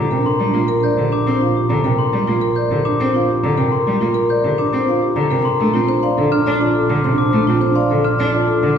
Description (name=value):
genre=classical, minimalist pattern music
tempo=104 BPM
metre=3/4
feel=straight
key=Bb major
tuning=A4 = 440 Hz
part: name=mellow hollow wooden-headed alto flute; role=second line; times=0.0-1.9, 5.6-8.8 s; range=D4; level=-23 LUFS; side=right 2 dB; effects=none
part: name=clear cello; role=accompaniment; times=0.0-8.7 s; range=C3 to D4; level=-21 LUFS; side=equal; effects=none
part: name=glockenspiel with rubber mallets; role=arpeggios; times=0.0-8.8 s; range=Bb5 to G6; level=-22 LUFS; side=left 4 dB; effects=none
part: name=clear double bass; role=bass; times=0.0-8.8 s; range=Bb1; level=-23 LUFS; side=right 3 dB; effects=none
part: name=vibraphone with medium mallets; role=melody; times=0.1-8.7 s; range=G4 to C6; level=-23 LUFS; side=left 5 dB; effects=none
part: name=marimba with medium mallets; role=arpeggios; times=0.1-8.5 s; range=D4 to D5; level=-20 LUFS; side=right 3 dB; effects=none
room=wet recital hall reverb, RT60 1.4 s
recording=recorded in a church or concert hall, lossy compression artefacts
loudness=-14 LUFS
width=side -8 dB against mid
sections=0.0-8.8 A section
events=none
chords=0.0 Bb6; 5.6 Dm/Bb